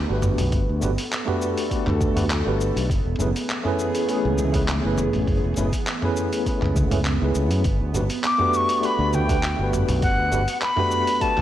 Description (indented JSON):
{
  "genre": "sunset chillout",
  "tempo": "101 BPM",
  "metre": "4/4",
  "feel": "straight",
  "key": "unclear",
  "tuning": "A4 = 440 Hz",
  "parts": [
    { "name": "airy breathy pad", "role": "sustained chords", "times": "0.0-11.4 s", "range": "E3 to A4", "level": "-30 LUFS", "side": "right 2 dB", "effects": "chorus" },
    { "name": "modern bright fingered electric bass", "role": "bass", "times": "0.0-11.4 s", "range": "E1 to F#2", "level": "-24 LUFS", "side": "equal", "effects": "none" },
    { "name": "tine electric piano", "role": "accompaniment", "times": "0.1-11.4 s", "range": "A3 to B4", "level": "-26 LUFS", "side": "equal", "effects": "medium stereo tremolo, auto-pan, ping-pong delay" },
    { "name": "dusty soul sampler-style drum kit", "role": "drums", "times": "0.2-11.4 s", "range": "cabasa, handclaps, hi-hat, toms", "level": "-28 LUFS", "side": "equal", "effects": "none" },
    { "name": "electronic kick drum", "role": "drums", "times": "0.5-11.3 s", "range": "none", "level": "-25 LUFS", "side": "equal", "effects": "none" },
    { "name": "congas", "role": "percussion", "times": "0.8-10.4 s", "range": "none", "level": "-33 LUFS", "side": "right 1 dB", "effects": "none" },
    { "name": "breathy bright jazz flute", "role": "melody", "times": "8.3-11.4 s", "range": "F#5 to D6", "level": "-22 LUFS", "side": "left 2 dB", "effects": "ping-pong delay" }
  ],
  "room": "moderate lush hall reverb, RT60 2.0 s",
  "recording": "worn, warbling old tape, cassette tape, warbly pitch drift",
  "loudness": "-20 LUFS",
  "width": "side -12 dB against mid",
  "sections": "0.0-11.4 A section",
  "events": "none",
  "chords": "0.0 Gmaj7; 2.9 F#m11; 7.7 Gmaj7"
}